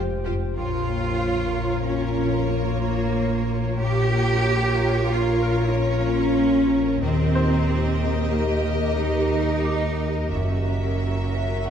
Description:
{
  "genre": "cinematic, suspense film score",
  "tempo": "93 BPM",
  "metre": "5/4",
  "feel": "straight",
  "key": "unclear",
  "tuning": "A4 = 439 Hz",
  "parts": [
    { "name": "rich studio violin section", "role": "melody", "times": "0.0-11.7 s", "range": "C5 to E5", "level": "-34 LUFS", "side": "left 2 dB", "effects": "none" },
    { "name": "granular cloud pad", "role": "sustained chords", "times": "0.0-11.7 s", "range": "F4 to Bb5", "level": "-35 LUFS", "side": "equal", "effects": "none" },
    { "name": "warm French horn section", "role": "sustained chords", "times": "0.0-11.7 s", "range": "F4 to E5", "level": "-33 LUFS", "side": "left 2 dB", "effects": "none" },
    { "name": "marimba with soft mallets", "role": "riff", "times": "0.0-11.7 s", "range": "F2 to Eb4", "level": "-27 LUFS", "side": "left 5 dB", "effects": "none" },
    { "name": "rich studio cello section", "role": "bass", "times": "0.0-11.7 s", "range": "Ab3 to G4", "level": "-25 LUFS", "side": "right 2 dB", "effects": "none" },
    { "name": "saturated sub bass", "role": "drone", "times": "0.0-11.7 s", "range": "F1 to Eb2", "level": "-30 LUFS", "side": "equal", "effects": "none" },
    { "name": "warm studio violin section", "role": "second line", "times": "0.2-11.7 s", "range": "G4 to Bb4", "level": "-34 LUFS", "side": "left 3 dB", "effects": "none" },
    { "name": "rich studio viola section", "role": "accompaniment", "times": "0.2-11.7 s", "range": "F4 to G4", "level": "-30 LUFS", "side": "right 2 dB", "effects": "none" },
    { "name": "dark studio double bass section", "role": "bass", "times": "0.3-11.7 s", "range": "Bb1 to F#2", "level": "-28 LUFS", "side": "right 4 dB", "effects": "none" },
    { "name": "bright grand piano", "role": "texture", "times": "5.4-11.7 s", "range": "C4 to D6", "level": "-35 LUFS", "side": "left 2 dB", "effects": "none" }
  ],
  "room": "wet concert hall reverb, RT60 2.4 s",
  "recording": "minimal, uncompressed stereo recording",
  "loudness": "-20 LUFS",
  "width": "side -8 dB against mid",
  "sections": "0.0-11.7 A section",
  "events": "none",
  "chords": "0.0 Fmadd9; 0.6 Bbm; 7.0 Eb; 10.3 F#7",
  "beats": "| 0.57 1.21 1.85 2.49 3.14 | 3.80 4.45 5.09 5.73 6.37 | 7.02 7.66 8.31 8.98 9.65 | 10.31 10.99 11.67"
}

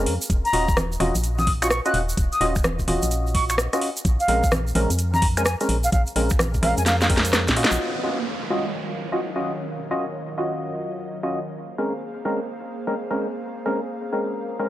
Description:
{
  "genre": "UK garage, two-step garage",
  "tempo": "128 BPM",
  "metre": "4/4",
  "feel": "swing 65% on 16ths",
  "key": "Eb minor",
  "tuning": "A4 = 441 Hz",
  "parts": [
    { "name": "percussive organ stab", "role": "stabs", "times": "0.0-14.7 s", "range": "Ab3 to Eb5", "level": "-26 LUFS", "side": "equal", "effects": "analog chorus, cassette tape, analog delay" },
    { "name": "organ-like FM bass", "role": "bass", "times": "0.0-7.8 s", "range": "Eb1 to Bb2", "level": "-24 LUFS", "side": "equal", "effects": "none" },
    { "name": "garage drum kit", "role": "drums", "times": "0.1-7.8 s", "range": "congas, finger snaps, hi-hat, rim click, snare drum", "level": "-24 LUFS", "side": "equal", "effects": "small room ambience" },
    { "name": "egg shaker", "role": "percussion", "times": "0.2-7.8 s", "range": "none", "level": "-32 LUFS", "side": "right 3 dB", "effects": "none" },
    { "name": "electronic kick drum", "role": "drums", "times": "0.3-7.5 s", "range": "none", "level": "-23 LUFS", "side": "equal", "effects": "small room ambience" },
    { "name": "reedy concert flute", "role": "melody", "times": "0.4-7.1 s", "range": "F5 to Gb6", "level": "-25 LUFS", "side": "equal", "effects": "none" },
    { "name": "airy breathy pad", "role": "sustained chords", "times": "7.8-14.7 s", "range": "Eb3 to F5", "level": "-33 LUFS", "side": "equal", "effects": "chorus, sidechain pumping" },
    { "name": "downlifter", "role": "sound effects", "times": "7.8-11.6 s", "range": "none", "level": "-32 LUFS", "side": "right 2 dB", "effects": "none" }
  ],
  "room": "light reverb",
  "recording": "dry, gritty hardware recording",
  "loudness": "-20 LUFS",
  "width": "side -14 dB against mid",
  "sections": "0.0-7.8 A section; 7.8-14.7 B section",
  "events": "drum fill 6.9-7.8; band accent 7.6; filter sweep on synth stab 7.8-14.7",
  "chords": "0.3 Ebm9; 4.0 Bbm9; 7.8 Ebm9; 11.5 Bbm9",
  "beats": "| 0.30 0.77 1.24 1.71 | 2.17 2.64 3.11 3.58 | 4.05 4.52 4.99 5.46 | 5.92 6.39 6.86 7.33 | 7.80 8.27 8.74 9.21 | 9.67 10.14 10.61 11.08 | 11.55 12.02 12.49 12.96 | 13.42 13.89 14.36"
}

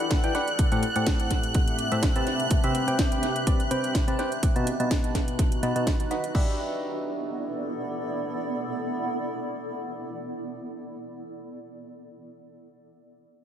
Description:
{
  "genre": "piano house",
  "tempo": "125 BPM",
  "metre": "4/4",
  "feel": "swing 54% on 16ths",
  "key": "E minor",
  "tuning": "A4 = 440 Hz",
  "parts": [
    { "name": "string machine, violins", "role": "sustained chords", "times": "0.0-6.4 s", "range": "F#6", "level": "-34 LUFS", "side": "right 1 dB", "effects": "ensemble chorus, sidechain pumping" },
    { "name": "barking FM electric piano", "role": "riff", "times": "0.0-11.0 s", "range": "A2 to B5", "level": "-29 LUFS", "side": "equal", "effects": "chorus, sidechain pumping, low-pass filter, analog delay" },
    { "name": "house drum kit", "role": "drums", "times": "0.0-6.5 s", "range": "crash cymbal, hi-hat, snare drum", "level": "-33 LUFS", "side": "right 1 dB", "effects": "studio reverb, analog delay" },
    { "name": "granular cloud pad", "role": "texture", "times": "0.0-10.9 s", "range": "A3 to F#5", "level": "-32 LUFS", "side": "equal", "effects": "built-in reverb, sidechain pumping" },
    { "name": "electronic kick drum", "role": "drums", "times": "0.1-6.5 s", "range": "none", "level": "-24 LUFS", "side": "equal", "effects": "studio reverb" }
  ],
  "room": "moderate spring reverb, RT60 1.3 s",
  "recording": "echo-heavy mix",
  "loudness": "-24 LUFS",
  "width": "side -10 dB against mid",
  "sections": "0.0-6.3 A section; 6.3-10.2 B section",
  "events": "filter sweep on FM electric piano 0.0-6.3",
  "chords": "0.0 Em7; 0.6 Am7; 2.3 Cmaj7; 4.4 B; 6.3 Em7",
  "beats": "0.11 | 0.59 1.07 1.55 2.03 | 2.51 2.99 3.47 3.95 | 4.43 4.91 5.39 5.87 | 6.35 6.83 7.31 7.79 | 8.27 8.75 9.23 9.71"
}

